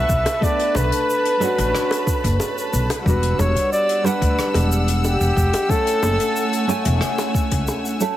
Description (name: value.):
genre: sunset chillout.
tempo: 91 BPM.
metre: 4/4.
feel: straight.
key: B minor.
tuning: A4 = 441 Hz.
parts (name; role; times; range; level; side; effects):
breathy flugelhorn; melody; 0.0-7.0 s; G4 to E5; -22 LUFS; equal; digital delay.
nylon-string guitar; accompaniment; 0.0-8.2 s; G3 to G#5; -25 LUFS; right 2 dB; auto-pan, digital delay.
rich studio string section; sustained chords; 0.0-8.2 s; G3 to E6; -26 LUFS; equal; none.
upright bass; bass; 0.0-7.6 s; E1 to D2; -20 LUFS; equal; none.
electronic kick drum; drums; 0.1-7.6 s; none; -22 LUFS; equal; none.
soft brush drum kit; drums; 0.1-8.1 s; hi-hat, rim click, shaker; -30 LUFS; left 2 dB; none.
bongos; percussion; 0.3-7.8 s; none; -28 LUFS; left 1 dB; none.
room: light reverb, small room ambience.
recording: heavily compressed radio sound.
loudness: -17 LUFS.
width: side -13 dB against mid.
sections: 0.0-8.2 A section.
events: break 7.7-8.2.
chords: 0.0 Bm9; 3.1 Em9; 5.7 F#m9.